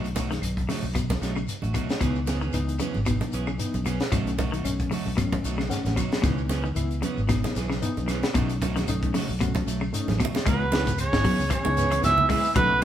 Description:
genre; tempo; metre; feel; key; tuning
afrobeat; 114 BPM; 4/4; swing 55% on 16ths; C# minor; A4 = 440 Hz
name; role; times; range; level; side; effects
clean electric guitar; arpeggios; 0.0-12.7 s; B2 to G#3; -32 LUFS; left 3 dB; none
electric guitar at the edge of break-up; stabs; 0.0-12.8 s; E3 to G#4; -34 LUFS; right 4 dB; none
fingered electric bass; bass; 0.0-12.8 s; G#1 to C#2; -29 LUFS; equal; none
shekere; percussion; 0.0-12.8 s; none; -36 LUFS; left 1 dB; none
tight funk drum kit; drums; 0.1-12.8 s; hi-hat, kick drum, snare drum; -29 LUFS; equal; none
congas; percussion; 0.2-12.7 s; none; -34 LUFS; right 4 dB; none
claves; percussion; 0.4-12.7 s; none; -43 LUFS; right 5 dB; none
bright reed electric piano; accompaniment; 2.0-12.8 s; D#3 to F#5; -33 LUFS; left 3 dB; overdrive, medium tremolo
clear trumpet; melody; 10.5-12.8 s; B4 to E5; -23 LUFS; right 3 dB; none
raspy baritone saxophone; second line; 10.5-12.8 s; B2 to E3; -36 LUFS; left 4 dB; none
trombone with plunger mute; second line; 10.5-12.8 s; B3 to E4; -35 LUFS; right 2 dB; none
room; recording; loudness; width
moderate stone room reverb, RT60 1.2 s; band playing live in one room; -23 LUFS; side -10 dB against mid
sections
0.0-10.5 A section; 10.5-12.8 B section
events
reed electric piano fill 5.4-6.2; drum fill 10.1-10.5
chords
0.0 B7; 2.0 C#m7; 4.1 B7; 6.2 C#m7; 8.3 B7; 10.5 C#m7

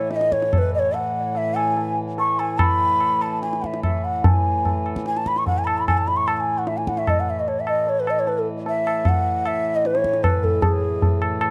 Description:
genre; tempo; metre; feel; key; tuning
indian classical, Hindustani; 143-155 BPM; 4/4; straight; A raga yaman; A4 = 440 Hz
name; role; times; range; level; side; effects
mellow hollow bansuri; melody; 0.0-11.2 s; G#4 to C#6; -24 LUFS; equal; tape echo
hand-pumped harmonium; drone; 0.0-11.5 s; A2 to E3; -32 LUFS; equal; none
tabla; percussion; 0.1-11.5 s; none; -25 LUFS; equal; none
room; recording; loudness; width
moderate studio reverb, RT60 0.5 s; dark, warm production; -21 LUFS; mono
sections
0.0-10.6 A section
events
speeding up 0.0-11.5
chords
none

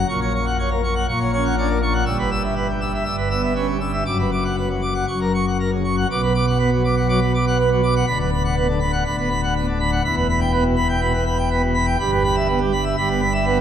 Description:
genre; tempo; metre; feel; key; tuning
classical, organ toccata; 122 BPM; 4/4; straight; B minor; A4 = 441 Hz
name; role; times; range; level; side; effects
pipe organ, plenum; solo; 0.0-13.6 s; D1 to E6; -18 LUFS; equal; none
room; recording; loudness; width
wet church reverb, RT60 3.4 s; none; -18 LUFS; side -9 dB against mid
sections
0.0-6.1 A section; 6.1-13.6 A section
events
none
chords
0.1 F#/A#; 2.1 Em/G; 4.1 Bm/F#; 5.1 F#; 6.1 Bm; 8.1 Bm/D; 10.0 Em; 12.0 Em/G

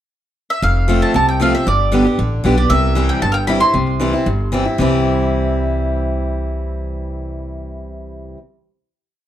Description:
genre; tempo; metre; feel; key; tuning
bluegrass; 231 BPM; 4/4; straight; C major; A4 = 440 Hz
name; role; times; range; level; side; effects
mandolin; melody; 0.5-4.5 s; D5 to C6; -18 LUFS; right 1 dB; tape echo
picked steel-string acoustic guitar; accompaniment; 0.6-8.4 s; F2 to G4; -18 LUFS; equal; none
upright bass; bass; 0.6-8.3 s; F1 to C2; -20 LUFS; equal; none
room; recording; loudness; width
light reverb; dark, warm production; -14 LUFS; side -11 dB against mid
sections
0.0-0.6 pickup bar; 0.6-4.8 A section; 4.8-6.9 final chord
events
none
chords
0.0 N.C.; 0.6 F; 1.7 G; 2.7 C

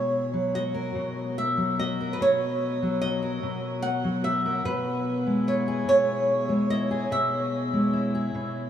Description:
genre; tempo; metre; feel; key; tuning
acoustic folk duo or small band; 49 BPM (dotted quarters); 6/8; straight; unclear; A4 = 440 Hz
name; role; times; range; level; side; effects
flamenco guitar; melody; 0.0-8.7 s; B4 to F#5; -26 LUFS; right 1 dB; none
fingerpicked steel-string acoustic guitar; accompaniment; 0.0-8.7 s; B2 to A#4; -27 LUFS; left 1 dB; none
room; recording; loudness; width
wet huge ambient reverb, RT60 8.2 s; in a vast, echoing space; -23 LUFS; side -10 dB against mid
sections
0.0-8.7 A section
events
none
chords
0.0 F#/B; 4.7 C#m/B

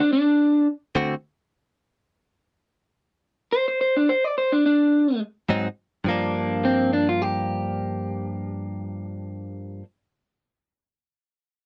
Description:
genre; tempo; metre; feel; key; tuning
blues; 106 BPM; 4/4; swing 53% on 16ths; G minor; A4 = 440 Hz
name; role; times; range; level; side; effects
electric guitar through a small old amp; melody; 0.0-9.8 s; C4 to D5; -22 LUFS; equal; none
direct-recorded clean electric guitar; stabs; 1.0-1.1, 5.5-9.8 s; G2 to F#4; -28 LUFS; equal; subtle chorus
room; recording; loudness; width
light reverb; dry, close 1970s-style studio recording; -23 LUFS; mono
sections
0.0-6.1 A section; 6.1-8.3 B section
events
stop 1.5-5.5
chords
0.0 D7; 1.5 N.C.; 5.5 Ab7; 6.1 Gm7

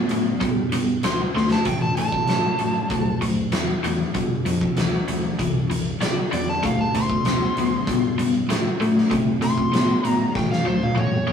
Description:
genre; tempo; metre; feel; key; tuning
blues rock power trio and southern rock; 97 BPM; 4/4; straight; D mixolydian; A4 = 442 Hz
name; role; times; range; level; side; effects
overdriven electric guitar; riff; 0.0-11.3 s; G2 to B3; -24 LUFS; left 2 dB; tremolo
growling fingered electric bass; bass; 0.1-11.3 s; G1 to C3; -28 LUFS; equal; overdrive
oversized low-tuned drum kit; drums; 0.1-11.3 s; hi-hat, kick drum, snare drum, toms; -23 LUFS; equal; none
overdriven slide guitar; melody; 1.0-11.3 s; C5 to C6; -26 LUFS; equal; none
room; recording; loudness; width
moderate stone room reverb, RT60 1.0 s; rough rehearsal-room recording, small room reverb; -19 LUFS; side -7 dB against mid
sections
0.0-11.3 A section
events
drum fill 1.3-1.7, 10.3-11.3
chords
0.0 D5; 1.7 A5; 4.1 G5; 6.6 D5; 10.3 A

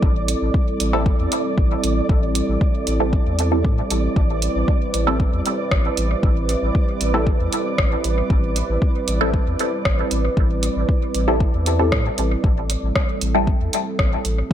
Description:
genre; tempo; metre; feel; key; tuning
dub techno; 116 BPM; 4/4; straight; A minor; A4 = 441 Hz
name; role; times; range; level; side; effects
dark analog pad; sustained chords; 0.0-14.5 s; G3 to B4; -25 LUFS; right 2 dB; chorus, sidechain pumping
soft dub sub bass; bass; 0.0-14.5 s; A1 to A2; -22 LUFS; equal; sidechain pumping
electronic kick drum; drums; 0.0-14.5 s; none; -19 LUFS; equal; none
flickering grainy texture; texture; 0.0-12.4 s; D5; -29 LUFS; right 3 dB; built-in reverb, sidechain pumping
punchy analog drum machine; drums; 0.3-14.4 s; hi-hat, rim click; -26 LUFS; equal; dub echo
filtered dub chord stab; stabs; 0.9-13.6 s; G3 to A4; -24 LUFS; equal; phaser, sidechain pumping, dub echo
room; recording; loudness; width
digital ambience; echo-heavy mix; -17 LUFS; side -10 dB against mid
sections
0.0-12.4 A section; 12.4-14.5 A section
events
filter sweep on synth stab 12.4-14.5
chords
0.0 Am7

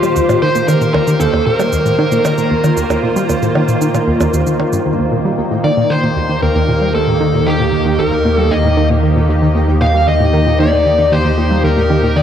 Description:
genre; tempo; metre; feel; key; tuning
ambient, sequencer-driven space music; 115 BPM; 4/4; straight; unclear; A4 = 438 Hz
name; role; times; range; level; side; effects
dark smooth lead guitar; melody; 0.0-12.2 s; F4 to F5; -16 LUFS; equal; overdrive, tape echo
evolving wavetable pad; sustained chords; 0.0-12.2 s; Eb3 to C5; -17 LUFS; equal; ensemble chorus, built-in reverb
tight sequenced synth; riff; 0.0-12.2 s; Eb2 to G3; -17 LUFS; equal; chorus, tape echo
cabasa and percussion blips; percussion; 0.0-4.8 s; none; -24 LUFS; right 5 dB; tape echo
analog drone; bass; 6.3-12.2 s; Eb2; -17 LUFS; equal; chorus
pulsing gated texture; texture; 5.2-12.2 s; Eb4 to G5; -25 LUFS; right 2 dB; chorus, built-in reverb
room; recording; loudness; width
wet concert hall reverb, RT60 2.2 s; dark, warm production; -11 LUFS; side -9 dB against mid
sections
0.0-4.9 A section; 4.9-12.2 B section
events
filter sweep on synth arpeggio sound 0.0-4.9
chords
0.0 Eb

